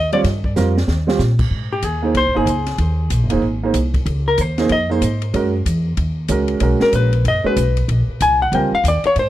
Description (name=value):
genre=jazz, small-group swing and bop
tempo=188 BPM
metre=4/4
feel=swing 62% on 8ths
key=Ab major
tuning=A4 = 444 Hz
part: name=vintage hollow-body jazz guitar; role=melody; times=0.0-9.3 s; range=G4 to Ab5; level=-19 LUFS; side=left 2 dB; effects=tape echo
part: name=upright bass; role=bass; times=0.0-9.3 s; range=Eb1 to Bb2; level=-18 LUFS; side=equal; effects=none
part: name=warm concert grand piano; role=accompaniment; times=0.1-8.7 s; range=G3 to Db5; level=-19 LUFS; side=right 4 dB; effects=none
part: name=open jazz drum kit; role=drums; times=0.1-9.3 s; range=crash cymbal, hi-hat, kick drum, ride cymbal, snare drum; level=-26 LUFS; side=equal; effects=none
room=small room ambience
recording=dry, close 1970s-style studio recording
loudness=-15 LUFS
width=side -14 dB against mid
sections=0.0-1.5 A section; 1.5-9.3 B section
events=drum fill 0.6-1.2; hollow-body jazz guitar solo 1.5-9.3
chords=0.2 Fsus24; 0.9 Eb; 1.5 Ab; 2.8 Ebm; 3.4 Ab; 4.1 Dbmaj9; 5.3 Gb7; 6.6 B5; 7.9 Eb7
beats=| 0.24 0.56 0.88 1.20 | 1.52 1.83 2.15 2.47 | 2.79 3.11 3.43 3.75 | 4.07 4.39 4.71 5.02 | 5.34 5.66 5.98 6.30 | 6.62 6.93 7.25 7.57 | 7.89 8.21 8.53 8.85 | 9.16